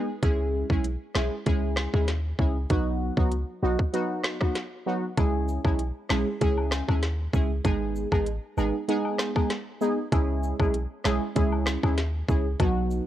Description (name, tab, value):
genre	dancehall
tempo	97 BPM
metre	4/4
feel	straight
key	C# minor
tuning	A4 = 436 Hz
part	synth brass stab	accompaniment	0.0-13.0 s	F#3 to G#4	-28 LUFS	right 1 dB	chorus
part	clean 808-style bass	bass	0.2-13.0 s	G#1 to D#2	-28 LUFS	equal	none
part	island pop drum kit	drums	0.2-12.7 s	hi-hat, kick drum, rim click, snare drum	-26 LUFS	equal	none
part	woodblock and cabasa	percussion	5.2-13.1 s	none	-38 LUFS	left 5 dB	none
room	little or no reverb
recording	worn, warbling old tape, cassette tape, warbly pitch drift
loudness	-24 LUFS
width	side -12 dB against mid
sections	0.0-5.2 A section; 5.2-13.1 B section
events	none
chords	0.2 C#m; 2.7 B; 5.2 C#m; 7.6 G#m; 10.1 C#m